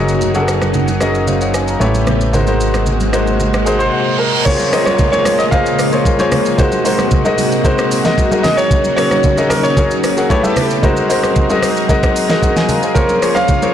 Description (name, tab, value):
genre	amapiano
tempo	113 BPM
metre	4/4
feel	straight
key	unclear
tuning	A4 = 445 Hz
part	clear concert grand piano	accompaniment	0.0-13.7 s	Gb3 to Bb5	-16 LUFS	left 2 dB	low-pass filter
part	string machine, full ensemble	sustained chords	0.0-13.7 s	C3 to Bb4	-19 LUFS	equal	ensemble chorus, sidechain pumping, low-pass filter
part	plucky analog bass	bass	0.0-3.9 s	Gb1 to A1	-18 LUFS	equal	transformer saturation
part	smooth R&B drum kit	drums	0.1-13.7 s	crash cymbal, hi-hat, kick drum, rim click, shaker, snare drum	-18 LUFS	right 1 dB	soft clipping on snare
part	congas	percussion	0.2-13.7 s	none	-22 LUFS	right 2 dB	none
part	reverse cymbal and downlifter	sound effects	3.6-8.7 s	none	-23 LUFS	right 3 dB	none
part	warm grand piano	melody	3.7-13.7 s	Ab4 to F5	-17 LUFS	right 1 dB	ping-pong delay
room	light reverb, digital ambience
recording	blown-out, overdriven recording, overdrive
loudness	-11 LUFS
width	side -10 dB against mid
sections	0.0-4.5 A section; 4.5-13.7 B section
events	reverse cymbal 3.6-4.5; grand piano fill 3.7-4.5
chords	0.0 Gb6; 1.8 A9; 2.3 Ab9; 4.5 Bbm7; 6.6 Ab9; 8.4 Gb6; 10.3 A9; 10.8 Ab9; 13.0 Bbm7